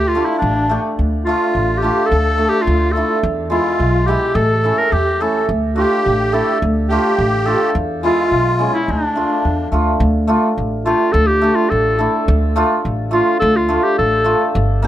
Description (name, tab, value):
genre	klezmer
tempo	106 BPM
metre	2/4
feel	straight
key	unclear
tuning	A4 = 440 Hz
part	clear clarinet	melody	0.0-14.5 s	D4 to Bb4	-18 LUFS	equal	tape echo
part	musette accordion	second line	0.0-9.7 s	D4 to A4	-22 LUFS	equal	none
part	upright bass	bass	0.0-14.9 s	G1 to E2	-18 LUFS	equal	none
part	hammered dulcimer	accompaniment	0.1-14.9 s	G#3 to G4	-19 LUFS	right 1 dB	none
room	light reverb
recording	close, detailed microphones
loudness	-14 LUFS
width	side -12 dB against mid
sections	1.0-10.0 A section; 10.0-14.9 B section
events	none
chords	0.0 Dm; 3.2 E; 4.4 A; 5.5 Dm; 7.8 E; 8.9 Dm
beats	0.42 | 0.98 1.55 | 2.11 2.67 | 3.24 3.80 | 4.36 4.93 | 5.49 6.05 | 6.62 7.18 | 7.75 8.32 | 8.88 9.45 | 10.01 10.58 | 11.14 11.71 | 12.28 12.84 | 13.41 13.98 | 14.54